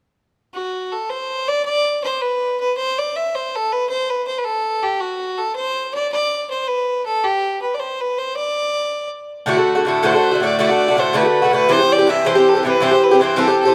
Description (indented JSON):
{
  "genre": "celtic folk, Celtic jig",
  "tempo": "108 BPM (dotted quarters)",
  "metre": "6/8",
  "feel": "straight",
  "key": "D mixolydian",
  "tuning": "A4 = 441 Hz",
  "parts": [
    { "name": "clear fiddle", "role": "melody", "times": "0.5-13.7 s", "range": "F#4 to E5", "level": "-21 LUFS", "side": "equal", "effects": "none" },
    { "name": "Irish bouzouki", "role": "accompaniment", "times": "9.5-13.7 s", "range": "G2 to G4", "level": "-16 LUFS", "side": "equal", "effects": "none" }
  ],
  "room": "light reverb, small room ambience",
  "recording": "rough home demo mix",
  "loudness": "-18 LUFS",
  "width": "mono",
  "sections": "0.5-9.5 A section; 9.5-13.7 A section",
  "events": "none",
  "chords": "0.5 N.C.; 9.5 D; 11.7 C"
}